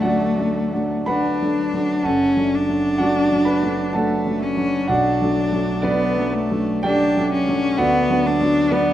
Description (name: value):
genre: classical, romantic duo for cello and grand piano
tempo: 55-65 BPM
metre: 3/4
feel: rubato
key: D major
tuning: A4 = 440 Hz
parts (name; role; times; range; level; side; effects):
- rich cello; melody; 0.0-8.9 s; A3 to D4; -20 LUFS; left 2 dB; none
- warm concert grand piano; accompaniment; 0.0-8.9 s; F#1 to B5; -19 LUFS; right 1 dB; none
room: moderate recital hall reverb, RT60 1.4 s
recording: none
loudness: -17 LUFS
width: side -12 dB against mid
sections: 0.0-8.9 A section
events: none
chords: 0.0 D; 2.1 D/F#; 4.9 Bm7; 7.8 Bm/D